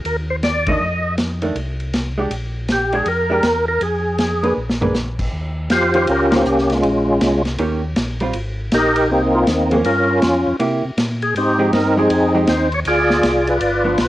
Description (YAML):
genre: soul jazz organ trio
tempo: 159 BPM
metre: 4/4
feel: swing 64% on 8ths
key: Bb mixolydian, Eb mixolydian from 5.3 s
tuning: A4 = 440 Hz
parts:
  - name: mellow tonewheel organ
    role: bass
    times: 0.0-14.1 s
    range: G1 to C3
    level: -24 LUFS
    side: equal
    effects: chorus vibrato, slow rotary speaker
  - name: percussive tonewheel organ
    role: melody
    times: 0.1-14.1 s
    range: Ab3 to Eb5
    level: -16 LUFS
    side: equal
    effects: slow rotary speaker, overdrive, chorus vibrato, cassette tape
  - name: vintage drum kit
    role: drums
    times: 0.1-14.1 s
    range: crash cymbal, hi-hat, kick drum, ride cymbal, snare drum, toms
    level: -24 LUFS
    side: equal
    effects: cassette tape
  - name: vintage hollow-body jazz guitar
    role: accompaniment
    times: 0.7-14.0 s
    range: Eb3 to C5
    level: -21 LUFS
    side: right 2 dB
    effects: none
room: light reverb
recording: home recording on cassette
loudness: -15 LUFS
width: side -15 dB against mid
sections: 0.0-5.3 A section; 5.3-14.1 B section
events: band accent 0.6, 6.3; drum fill 4.6-5.0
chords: 0.0 Cmadd9 (rootless); 0.8 F7(no3); 2.3 Bb6; 3.8 Fm; 4.6 Bb7b9; 5.3 Eb13; 6.8 Bbm9; 7.6 Eb7; 8.3 Abmaj9; 9.8 Gm7b5; 10.6 C7; 11.4 Fm9; 12.9 Dm7b5